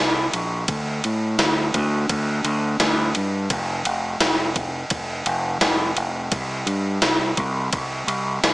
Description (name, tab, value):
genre	rock, shoegaze and dream pop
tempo	85 BPM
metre	4/4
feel	straight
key	D minor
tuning	A4 = 440 Hz
part	growling fingered electric bass	bass	0.0-8.5 s	F1 to A2	-24 LUFS	equal	overdrive
part	gated 80s digital drum machine	drums	0.3-8.5 s	kick drum, ride cymbal, snare drum	-21 LUFS	equal	gated reverb, gated reverb snare
room	moderate plate reverb, RT60 1.5 s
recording	dreamy mix soaked in reverb, small speaker sound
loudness	-20 LUFS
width	side -20 dB against mid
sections	0.7-8.5 A section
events	none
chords	none